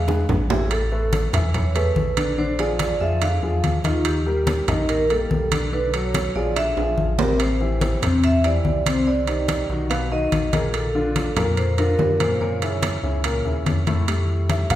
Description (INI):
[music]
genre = Afro-Cuban jazz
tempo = 144 BPM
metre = 4/4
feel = straight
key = unclear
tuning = A4 = 440 Hz
[part]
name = vibraphone with medium hard mallets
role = melody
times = 0.0-13.6 s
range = F4 to F5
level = -25 LUFS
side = right 2 dB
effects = none
[part]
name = warm concert grand piano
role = accompaniment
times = 0.0-14.8 s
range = A2 to F5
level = -25 LUFS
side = left 2 dB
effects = none
[part]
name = sub bass with octave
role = bass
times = 0.0-14.8 s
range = A1 to Gb2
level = -24 LUFS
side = equal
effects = none
[part]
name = congas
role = percussion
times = 0.1-14.8 s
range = none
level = -26 LUFS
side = left 2 dB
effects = none
[part]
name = timbales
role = percussion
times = 0.1-14.8 s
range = none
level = -28 LUFS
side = right 6 dB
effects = none
[sound]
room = wet recital hall reverb, RT60 1.5 s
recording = recorded in a church or concert hall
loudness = -19 LUFS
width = side -13 dB against mid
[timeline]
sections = 0.7-14.1 A section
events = drum fill 0.1-0.7, 6.8-7.4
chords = 0.0 E; 0.7 Asus2; 2.4 Bb7; 4.0 Ebmaj7; 5.7 Bm7; 6.6 Bb9; 7.4 Am7; 9.1 Cm; 9.9 B; 10.7 Bbmaj7; 12.4 Gb7; 14.1 Fmaj9